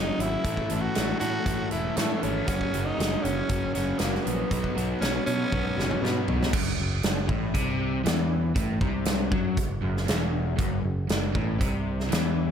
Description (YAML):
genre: classic rock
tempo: 118 BPM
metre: 4/4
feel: straight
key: unclear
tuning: A4 = 440 Hz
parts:
  - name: raspy tenor saxophone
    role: melody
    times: 0.0-6.2 s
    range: A3 to F#4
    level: -31 LUFS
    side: right 1 dB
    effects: none
  - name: crunchy overdriven guitar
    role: riff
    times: 0.0-12.5 s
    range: E2 to B3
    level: -32 LUFS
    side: left 12 dB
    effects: spring reverb
  - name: crunchy overdriven guitar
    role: riff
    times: 0.0-12.5 s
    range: E2 to A4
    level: -33 LUFS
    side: right 12 dB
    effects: none
  - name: picked electric bass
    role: bass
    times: 0.0-12.5 s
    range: E1 to B2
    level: -30 LUFS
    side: equal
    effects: none
  - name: big rock drum kit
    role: drums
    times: 0.2-12.2 s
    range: crash cymbal, hi-hat, kick drum, snare drum, toms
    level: -28 LUFS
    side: equal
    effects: none
room: light reverb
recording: none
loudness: -24 LUFS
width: side -8 dB against mid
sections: 0.0-6.5 A section; 6.5-12.5 B section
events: drum fill 5.5-6.5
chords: 0.4 A; 2.5 F#; 4.5 Badd9; 6.5 Am6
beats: | 0.44 0.95 1.46 1.97 | 2.47 2.98 3.49 4.00 | 4.51 5.01 5.52 6.03 | 6.54 7.04 7.55 8.06 | 8.57 9.07 9.58 10.09 | 10.60 11.11 11.62 12.12